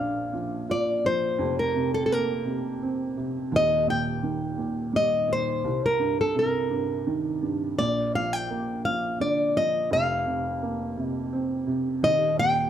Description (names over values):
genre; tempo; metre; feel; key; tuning
folk; 85 BPM; 3/4; straight; Bb major; A4 = 440 Hz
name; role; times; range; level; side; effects
flamenco guitar; melody; 0.0-12.7 s; A4 to G5; -24 LUFS; left 1 dB; none
felt-muted upright piano; accompaniment; 0.0-12.7 s; Eb1 to F4; -28 LUFS; right 2 dB; none
room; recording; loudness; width
moderate large studio reverb, RT60 0.9 s; none; -23 LUFS; side -10 dB against mid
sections
0.0-12.7 A section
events
none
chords
0.0 Bb; 1.4 Fsus4; 3.5 Eb; 5.7 Cm7; 7.8 Bb; 9.9 Fsus4; 12.0 Eb